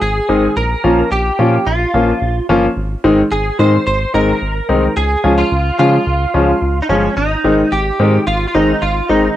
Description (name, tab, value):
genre	synth-pop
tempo	109 BPM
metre	4/4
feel	straight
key	Ab major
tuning	A4 = 440 Hz
part	direct-recorded clean electric guitar	melody	0.0-9.4 s	Db4 to C5	-17 LUFS	right 1 dB	ensemble chorus, cassette tape, plate reverb
part	round analog bass	bass	0.0-9.3 s	G1 to Db3	-18 LUFS	equal	none
part	clear concert grand piano	accompaniment	0.3-9.2 s	Eb3 to F4	-14 LUFS	left 1 dB	cassette tape, plate reverb
room	moderate booth ambience, RT60 0.2 s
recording	home recording on cassette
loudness	-12 LUFS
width	side -13 dB against mid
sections	0.0-9.4 A section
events	none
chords	0.0 Ab; 0.6 Bbm; 2.8 Ab; 5.0 Db; 7.2 Ab